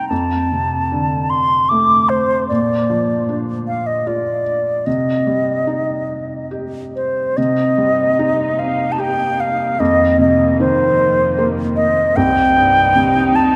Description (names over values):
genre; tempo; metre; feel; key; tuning
celtic folk, Celtic slow air; 75 BPM; 3/4; rubato; C dorian; A4 = 440 Hz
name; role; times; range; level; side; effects
wooden flute; melody; 0.0-13.6 s; C5 to D6; -18 LUFS; equal; none
felt-muted upright piano; accompaniment; 0.0-13.6 s; C2 to G4; -21 LUFS; equal; none
muted studio string section; sustained chords; 7.4-13.6 s; F2 to Eb4; -26 LUFS; equal; none
room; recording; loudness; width
wet cathedral reverb, RT60 5.9 s; none; -16 LUFS; mono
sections
0.0-7.4 A section; 7.4-13.6 A section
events
none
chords
0.1 F6; 2.5 Bb; 4.9 Cm; 7.4 Cm7; 9.8 F7sus4; 12.2 Cm7